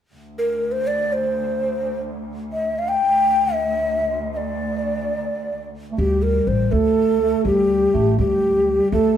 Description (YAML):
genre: persian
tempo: free time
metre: none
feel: none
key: D dastgah shur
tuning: A4 = 441 Hz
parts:
  - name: muted symphonic cello section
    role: drone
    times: 0.1-6.0 s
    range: D2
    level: -30 LUFS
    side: left 1 dB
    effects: none
  - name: breathy mellow ney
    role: melody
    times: 0.4-9.2 s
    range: G4 to G5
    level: -19 LUFS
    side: equal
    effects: none
  - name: mellow bass clarinet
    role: second line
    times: 5.9-9.2 s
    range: G3 to A3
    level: -22 LUFS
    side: right 2 dB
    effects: none
  - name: upright bass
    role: bass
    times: 6.0-9.2 s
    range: A1 to D2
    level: -22 LUFS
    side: equal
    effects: none
room: moderate large studio reverb, RT60 1.3 s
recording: band playing live in one room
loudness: -18 LUFS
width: side -10 dB against mid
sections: 0.1-6.0 A section; 6.0-9.2 B section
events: none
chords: none